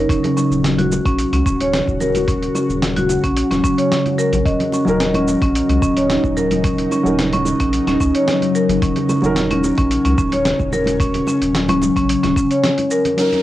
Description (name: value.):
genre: organic downtempo.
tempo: 110 BPM.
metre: 4/4.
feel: straight.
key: Eb minor pentatonic.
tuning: A4 = 440 Hz.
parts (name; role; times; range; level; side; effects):
ethereal airy pad; sustained chords; 0.0-13.4 s; Db3 to Gb4; -21 LUFS; left 2 dB; ensemble chorus, built-in reverb, phaser, sidechain pumping, cassette tape.
round analog bass; bass; 0.0-12.3 s; Eb1 to Db2; -24 LUFS; equal; tube saturation, sidechain pumping.
marimba with medium hard mallets; arpeggios; 0.1-13.0 s; Db4 to Db5; -18 LUFS; equal; cassette tape, analog delay.
dusty soul sampler-style drum kit; drums; 0.1-13.4 s; hi-hat, shaker, snare drum; -24 LUFS; equal; overdrive, cassette tape.
electronic kick drum; drums; 0.1-12.5 s; none; -20 LUFS; equal; overdrive, cassette tape.
congas; percussion; 0.2-13.4 s; none; -27 LUFS; right 2 dB; none.
quartz singing bowl; texture; 4.5-13.4 s; Db5 to Eb5; -31 LUFS; left 1 dB; cassette tape.
felt-muted upright piano; accompaniment; 4.8-13.4 s; Gb3 to Bb4; -23 LUFS; right 1 dB; sidechain pumping, cassette tape, analog delay.
breathy flute-like synth lead; melody; 13.2-13.4 s; Bb4; -17 LUFS; left 2 dB; lush chorus, cassette tape.
downlifter; sound effects; 13.2-13.4 s; none; -27 LUFS; right 1 dB; none.
room: wet booth ambience, RT60 0.2 s.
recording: home recording on cassette.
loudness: -14 LUFS.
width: side -14 dB against mid.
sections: 0.0-13.2 A section.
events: band accent 12.6.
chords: 0.0 Ebm7.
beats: | 0.10 0.64 1.19 1.73 | 2.28 2.82 3.37 3.91 | 4.46 5.00 5.55 6.10 | 6.64 7.19 7.73 8.28 | 8.82 9.37 9.91 10.46 | 11.01 11.55 12.10 12.64 | 13.19.